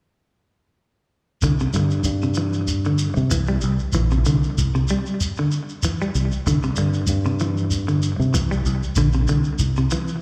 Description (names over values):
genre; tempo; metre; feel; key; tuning
afrobeat; 95 BPM; 4/4; swing 54% on 16ths; C mixolydian; A4 = 440 Hz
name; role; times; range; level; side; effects
clean electric guitar; arpeggios; 1.4-10.1 s; C3 to G3; -26 LUFS; equal; spring reverb, analog delay, slapback echo
fingered electric bass; bass; 1.4-9.9 s; Bb1 to C3; -23 LUFS; equal; none
shekere; percussion; 1.4-10.2 s; none; -30 LUFS; equal; none
room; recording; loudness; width
moderate lush hall reverb, RT60 2.5 s; live gig heard through the venue's PA, club reverb; -21 LUFS; mono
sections
1.4-10.2 A section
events
none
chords
1.4 Csus2